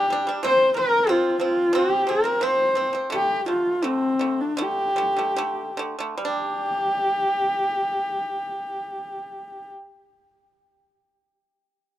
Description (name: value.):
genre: mongolian traditional.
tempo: 70-93 BPM.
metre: 4/4.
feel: straight.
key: G minor.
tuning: A4 = 443 Hz.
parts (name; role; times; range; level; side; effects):
dark horsehead fiddle; melody; 0.0-9.7 s; C4 to C5; -21 LUFS; left 1 dB; none.
pipa; arpeggios; 0.0-9.7 s; D3 to D4; -28 LUFS; right 2 dB; none.
room: small room ambience.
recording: dry, close 1970s-style studio recording.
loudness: -20 LUFS.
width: side -13 dB against mid.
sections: 0.0-6.2 A section; 6.2-9.7 B section.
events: slowing down 0.4-6.2.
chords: 0.4 F5; 3.1 D5; 6.2 G5.